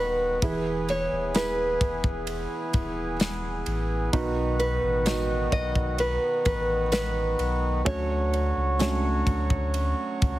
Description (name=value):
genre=pop ballad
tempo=65 BPM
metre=4/4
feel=straight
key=E major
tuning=A4 = 436 Hz
part: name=nylon-string guitar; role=melody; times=0.0-10.4 s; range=B4 to D#5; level=-28 LUFS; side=equal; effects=none
part: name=felt-muted upright piano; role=accompaniment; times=0.0-10.4 s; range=B2 to C#5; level=-31 LUFS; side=right 3 dB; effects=none
part: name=hand-pumped harmonium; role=sustained chords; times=0.0-10.4 s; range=D#3 to C#5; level=-32 LUFS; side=equal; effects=none
part: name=warm sub bass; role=bass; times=0.0-10.4 s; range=D#1 to D2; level=-29 LUFS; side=equal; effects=none
part: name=modern studio drum kit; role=drums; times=0.4-10.4 s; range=kick drum, ride cymbal, snare drum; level=-28 LUFS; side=equal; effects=none
part: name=tambourine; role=percussion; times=1.4-9.0 s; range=none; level=-41 LUFS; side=left 5 dB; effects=none
room=light reverb, small room ambience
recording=heavily compressed radio sound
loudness=-23 LUFS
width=side -16 dB against mid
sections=0.0-10.4 A section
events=none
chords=0.4 E; 4.1 B; 7.9 Dmaj7